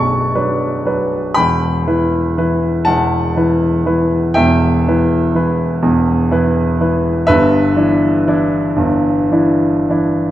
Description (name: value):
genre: classical, romantic nocturne for solo piano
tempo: 40 BPM (dotted quarters)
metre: 12/8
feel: rubato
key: unclear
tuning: A4 = 442 Hz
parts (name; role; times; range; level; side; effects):
- warm baby grand piano; solo; 0.0-10.3 s; B0 to D6; -12 LUFS; equal; none
room: wet recital hall reverb, RT60 1.5 s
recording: dark, warm production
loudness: -12 LUFS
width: side -13 dB against mid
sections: 0.0-10.3 A section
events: none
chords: 0.0 Bm; 1.4 Em; 7.3 Em7/G